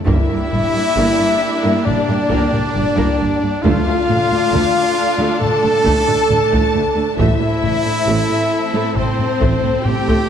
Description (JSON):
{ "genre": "cinematic, epic orchestral film score", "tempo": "67 BPM", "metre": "4/4", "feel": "straight", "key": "G dorian", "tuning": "A4 = 439 Hz", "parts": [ { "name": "warm symphonic violin section", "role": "melody", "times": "0.0-10.3 s", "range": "C5 to A5", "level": "-27 LUFS", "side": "left 4 dB", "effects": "none" }, { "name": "rich studio viola section", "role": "accompaniment", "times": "0.0-10.3 s", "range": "A3 to D4", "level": "-24 LUFS", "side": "right 1 dB", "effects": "none" }, { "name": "warm symphonic string section", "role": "sustained chords", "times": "0.0-10.3 s", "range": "A3 to D5", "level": "-26 LUFS", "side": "left 1 dB", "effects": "none" }, { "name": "rich symphonic violin section", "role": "second line", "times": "0.1-10.3 s", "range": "C5 to A5", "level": "-25 LUFS", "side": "left 5 dB", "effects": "none" }, { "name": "dark French horn section", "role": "sustained chords", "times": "0.1-10.3 s", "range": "C4 to A4", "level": "-19 LUFS", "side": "left 2 dB", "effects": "none" }, { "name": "bright trumpet", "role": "stabs", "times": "0.1-10.3 s", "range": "C4 to A4", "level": "-22 LUFS", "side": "right 2 dB", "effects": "none" }, { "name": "rich symphonic double bass section", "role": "bass", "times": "0.1-9.9 s", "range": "G1 to D2", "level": "-24 LUFS", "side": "right 4 dB", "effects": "none" }, { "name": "warm symphonic cello section", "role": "bass", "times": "0.1-10.2 s", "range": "D2 to A2", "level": "-23 LUFS", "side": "right 3 dB", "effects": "none" }, { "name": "taiko ensemble", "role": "drums", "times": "0.1-10.3 s", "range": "none", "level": "-20 LUFS", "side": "equal", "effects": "none" } ], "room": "moderate concert hall reverb, RT60 2.2 s", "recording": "dark, warm production", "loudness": "-14 LUFS", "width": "side -8 dB against mid", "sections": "0.0-10.3 A section", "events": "none", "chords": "0.1 Gm; 3.6 Dm; 7.2 Am" }